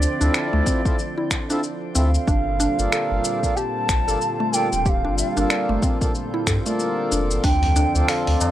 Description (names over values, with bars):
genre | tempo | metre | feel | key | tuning
organic downtempo | 93 BPM | 4/4 | swing 59% on 16ths | unclear | A4 = 438 Hz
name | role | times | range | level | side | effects
mellow hollow bansuri | melody | 0.0-8.5 s | D5 to A5 | -25 LUFS | right 2 dB | analog delay
warm analog pad | sustained chords | 0.0-8.5 s | Bb2 to A4 | -29 LUFS | left 1 dB | chorus, sidechain pumping
mallet-like synth pluck | arpeggios | 0.0-8.2 s | A3 to D5 | -27 LUFS | equal | chorus, analog delay
warm sub bass | bass | 0.0-8.4 s | D1 to G2 | -22 LUFS | equal | sidechain pumping
dusty soul sampler-style drum kit | drums | 0.0-8.5 s | finger snaps, hi-hat, shaker | -26 LUFS | left 1 dB | none
drifting glass-harmonics texture | texture | 0.0-8.5 s | C4 to C5 | -36 LUFS | right 2 dB | chorus, built-in reverb
pedal harmonium | accompaniment | 0.2-8.5 s | Bb3 to A4 | -28 LUFS | equal | sidechain pumping, analog delay
electronic kick drum | drums | 0.7-7.6 s | none | -22 LUFS | equal | overdrive
tabla | percussion | 7.6-8.5 s | none | -26 LUFS | equal | none
room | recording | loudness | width
digital ambience | dry, gritty hardware recording, cassette tape | -19 LUFS | side -12 dB against mid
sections
0.0-8.5 A section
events
none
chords
0.0 Dm9; 2.3 Gm9; 7.4 Dm7